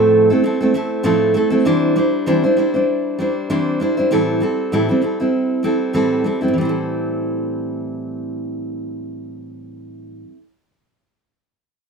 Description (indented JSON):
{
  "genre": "pop",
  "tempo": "98 BPM",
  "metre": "4/4",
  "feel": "swing 55% on 16ths",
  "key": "A minor",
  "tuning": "A4 = 436 Hz",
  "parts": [
    { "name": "picked steel-string acoustic guitar", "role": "solo", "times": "0.0-10.4 s", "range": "A2 to C5", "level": "-16 LUFS", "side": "right 1 dB", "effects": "none" }
  ],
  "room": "light reverb",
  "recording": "band playing live in one room",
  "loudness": "-16 LUFS",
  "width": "side -5 dB against mid",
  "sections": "0.0-1.6 A section; 1.6-6.5 B section; 6.5-9.0 C section",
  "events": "none",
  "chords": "0.0 Fmaj7/A; 1.6 Cadd9; 4.1 Am7"
}